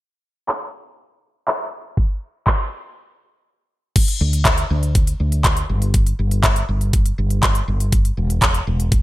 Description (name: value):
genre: dance-pop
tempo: 121 BPM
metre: 4/4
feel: straight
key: unclear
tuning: A4 = 439 Hz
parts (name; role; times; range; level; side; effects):
- pop drum kit; drums; 0.5-9.0 s; crash cymbal, handclaps, hi-hat, kick drum; -17 LUFS; equal; gated reverb
- woody fretless electric bass; bass; 4.2-9.0 s; E1 to D2; -19 LUFS; equal; wide subtle chorus, sidechain pumping
room: little or no reverb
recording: bright 1980s-style digital production, low-pass filter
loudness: -17 LUFS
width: side -17 dB against mid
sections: 0.0-4.0 A section; 4.0-9.0 B section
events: filter sweep 0.0-4.0; break 3.0-4.0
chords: none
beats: 0.49 0.98 1.48 | 1.98 2.47 2.97 3.46 | 3.96 4.45 4.95 5.45 | 5.94 6.44 6.93 7.43 | 7.92 8.42 8.92